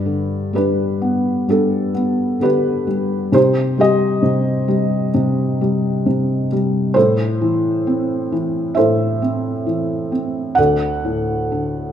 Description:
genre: classical, lyrical solo piano.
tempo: 66 BPM.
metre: 4/4.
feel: rubato.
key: G major.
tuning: A4 = 440 Hz.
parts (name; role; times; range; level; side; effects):
felt-muted upright piano; solo; 0.0-11.9 s; D2 to F#5; -16 LUFS; equal; none.
room: wet recital hall reverb, RT60 1.6 s.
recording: minimal, uncompressed stereo recording.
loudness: -15 LUFS.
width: side -9 dB against mid.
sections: 0.0-11.9 A section.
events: none.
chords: 0.0 G; 3.3 Cm; 7.0 Am; 10.6 D.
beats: 0.54 1.48 2.41 | 3.33 4.24 5.15 6.06 | 6.96 7.86 8.77 9.67 | 10.58 11.51.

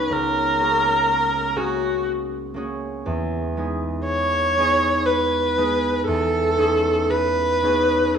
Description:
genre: classical, impressionist duo for viola and harp.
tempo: 57-62 BPM.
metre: 3/4.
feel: rubato.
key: E major.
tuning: A4 = 439 Hz.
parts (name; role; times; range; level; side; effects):
warm viola; melody; 0.0-8.2 s; F#4 to C#5; -19 LUFS; equal; none.
concert harp; accompaniment; 0.0-8.2 s; C#2 to G#4; -24 LUFS; right 1 dB; none.
room: moderate recital hall reverb, RT60 1.4 s.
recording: small room ambience.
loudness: -19 LUFS.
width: side -7 dB against mid.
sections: 0.0-8.2 A section.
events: none.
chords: 0.1 F#add9/C#; 3.1 Emaj7; 6.1 B13/E.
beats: | 0.13 1.09 2.07 | 3.05 4.07 5.08 | 6.08 7.11 8.16.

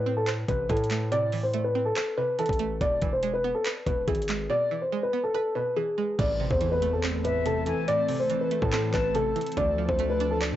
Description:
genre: hip hop, trap.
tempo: 142 BPM.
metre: 4/4.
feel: half-time.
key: A harmonic minor.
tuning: A4 = 438 Hz.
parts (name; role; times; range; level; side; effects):
dark concert grand piano; melody; 0.0-10.4 s; G#4 to D5; -26 LUFS; left 1 dB; cassette tape, analog delay.
string-like resonator pluck; accompaniment; 0.0-10.6 s; A2 to D5; -34 LUFS; right 9 dB; chorus.
hard-hitting 808-style bass; bass; 0.0-10.6 s; E1 to D3; -31 LUFS; equal; none.
trap drum kit; drums; 0.3-10.5 s; crash cymbal, handclaps, hi-hat, kick drum; -32 LUFS; equal; none.
airy breathy pad; sustained chords; 6.2-10.6 s; E3 to A4; -32 LUFS; left 1 dB; chorus.
impact; sound effects; 6.2-7.9 s; none; -39 LUFS; equal; none.
silver concert flute; second line; 7.2-9.1 s; E5 to A5; -38 LUFS; left 8 dB; analog delay.
room: little or no reverb.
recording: home recording on cassette, nothing above 7.9 kHz.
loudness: -24 LUFS.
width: side -12 dB against mid.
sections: 0.0-6.2 A section; 6.2-10.6 B section.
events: impact 6.2-7.9.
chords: 0.0 Am; 2.8 E; 6.2 Am; 9.6 Dm.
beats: 0.27 0.70 | 1.12 1.54 1.96 2.39 | 2.81 3.23 3.65 4.08 | 4.50 4.92 5.34 5.77 | 6.19 6.61 7.04 7.46 | 7.88 8.30 8.72 9.15 | 9.57 9.99 10.41.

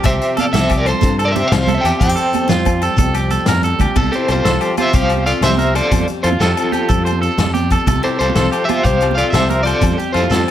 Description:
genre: highlife guitar band.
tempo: 123 BPM (dotted quarters).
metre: 12/8.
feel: straight.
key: C major.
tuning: A4 = 440 Hz.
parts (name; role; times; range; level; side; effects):
picked steel-string acoustic guitar; accompaniment; 0.0-10.5 s; F2 to G4; -23 LUFS; left 6 dB; none.
electric guitar at the edge of break-up; arpeggios; 0.0-10.5 s; F4 to C5; -21 LUFS; right 4 dB; plate reverb.
agogo bells; percussion; 0.0-10.5 s; none; -28 LUFS; left 17 dB; none.
shekere; percussion; 0.0-10.4 s; none; -22 LUFS; left 2 dB; none.
electric guitar at the edge of break-up; melody; 0.1-10.5 s; F4 to G5; -18 LUFS; equal; tremolo, plate reverb.
fingered electric bass; bass; 0.1-10.4 s; C2 to G2; -19 LUFS; equal; none.
vintage drum kit; drums; 0.1-10.5 s; crash cymbal, hi-hat, kick drum, snare drum; -20 LUFS; equal; none.
congas; percussion; 0.1-10.5 s; none; -24 LUFS; right 14 dB; none.
edgy alto saxophone; second line; 4.2-10.5 s; C4 to C5; -26 LUFS; left 11 dB; plate reverb.
room: light reverb.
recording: none.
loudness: -13 LUFS.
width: side -11 dB against mid.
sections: 0.0-4.0 A section; 4.0-10.5 B section.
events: drum fill 3.2-4.0.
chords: 0.0 Csus4; 5.9 Fadd9; 7.9 Csus4; 9.8 Fadd9.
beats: | 0.06 0.55 1.04 1.53 | 2.01 2.50 2.99 3.48 | 3.97 4.45 4.94 5.43 | 5.92 6.41 6.90 7.38 | 7.87 8.36 8.85 9.34 | 9.83 10.31.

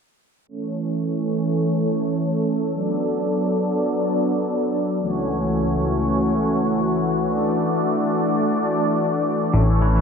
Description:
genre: synthwave.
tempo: free time.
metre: none.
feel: none.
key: D major.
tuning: A4 = 440 Hz.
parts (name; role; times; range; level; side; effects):
brassy analog pad; sustained chords; 0.5-10.0 s; C#2 to D5; -19 LUFS; equal; chorus.
semi-hollow electric guitar; riff; 9.5-10.0 s; A2 to E3; -26 LUFS; right 2 dB; lush chorus.
fat analog bass; bass; 9.5-10.0 s; A1; -16 LUFS; equal; none.
room: wet lush hall reverb, RT60 2.4 s.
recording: bright 1980s-style digital production, low-pass filter.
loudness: -19 LUFS.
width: side -6 dB against mid.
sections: 0.5-10.0 A section.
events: filter sweep on analog synth pad 0.5-10.0; filter sweep 0.5-10.0.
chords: 0.5 A; 2.7 Bm7; 5.0 F#m7/C#; 7.3 Dadd9.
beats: free time.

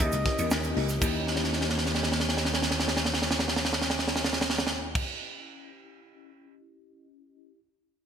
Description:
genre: polished 1980s jazz-funk pop.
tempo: 118 BPM.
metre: 4/4.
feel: straight.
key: unclear.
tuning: A4 = 440 Hz.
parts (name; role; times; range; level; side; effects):
warm flugelhorn; melody; 0.0-0.5 s; Eb5; -35 LUFS; left 1 dB; digital delay.
mellow tine electric piano; accompaniment; 0.0-7.6 s; Db4 to Eb5; -38 LUFS; left 4 dB; medium stereo tremolo, analog chorus.
string machine, violins; sustained chords; 0.0-5.0 s; Fb3 to G4; -38 LUFS; left 1 dB; none.
mellow electric guitar; riff; 0.0-5.1 s; Bb3 to Db5; -40 LUFS; right 2 dB; none.
vintage slap bass; bass; 0.0-5.0 s; Db2 to Fb2; -32 LUFS; equal; none.
tight funk drum kit; drums; 0.0-6.5 s; crash cymbal, hi-hat, kick drum, snare drum; -27 LUFS; right 1 dB; gated reverb.
egg shaker; percussion; 0.1-5.0 s; none; -40 LUFS; right 7 dB; none.
room: moderate lush hall reverb, RT60 1.7 s, small room ambience.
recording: bright 1980s-style digital production.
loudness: -25 LUFS.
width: side -8 dB against mid.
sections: 0.0-1.0 A section; 1.0-5.1 B section.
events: drum fill 1.3-5.0.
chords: 0.0 Eb7b9.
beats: 0.00 0.50 | 1.01 1.52 2.03 2.54 | 3.04 3.55 4.06 4.57.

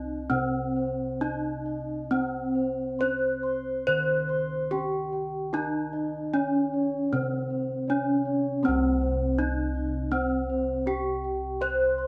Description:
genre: Javanese gamelan.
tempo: 66-81 BPM.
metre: 4/4.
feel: straight.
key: unclear.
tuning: A4 = 440 Hz.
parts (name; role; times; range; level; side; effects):
gamelan-type bronze metallophone; melody; 0.0-12.1 s; C4 to C5; -30 LUFS; equal; none.
gamelan-type bronze metallophone; arpeggios; 0.0-12.1 s; C5 to C6; -36 LUFS; equal; none.
gamelan-type bossed gongs; bass; 0.0-12.1 s; C2 to C5; -34 LUFS; equal; none.
room: wet stone room reverb, RT60 0.9 s.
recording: band playing live in one room.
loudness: -28 LUFS.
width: mono.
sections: 0.0-8.6 A section; 8.6-12.1 B section.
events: none.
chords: none.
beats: 0.31 1.21 | 2.11 3.00 3.87 4.72 | 5.54 6.35 7.13 7.90 | 8.65 9.39 10.13 10.87 | 11.61.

